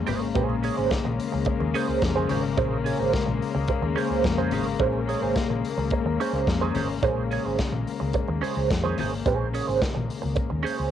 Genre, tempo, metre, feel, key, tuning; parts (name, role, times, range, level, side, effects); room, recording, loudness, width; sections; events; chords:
disco; 108 BPM; 4/4; straight; Bb minor; A4 = 440 Hz
warm chamber string section; sustained chords; 0.0-10.9 s; Db3 to Bb3; -28 LUFS; left 8 dB; cassette tape
hollow-body short-scale fingered electric bass; bass; 0.0-10.9 s; Ab1 to F2; -29 LUFS; equal
direct-recorded clean electric guitar; accompaniment; 0.1-10.9 s; Db4 to Db5; -27 LUFS; right 8 dB; wah, cassette tape
modern studio drum kit; drums; 0.1-10.8 s; hi-hat, kick drum, snare drum; -30 LUFS; equal
congas; percussion; 0.1-10.6 s; -36 LUFS; left 6 dB
little or no reverb; home recording on cassette; -23 LUFS; side -10 dB against mid
0.0-10.9 A section
0.0 Bbm9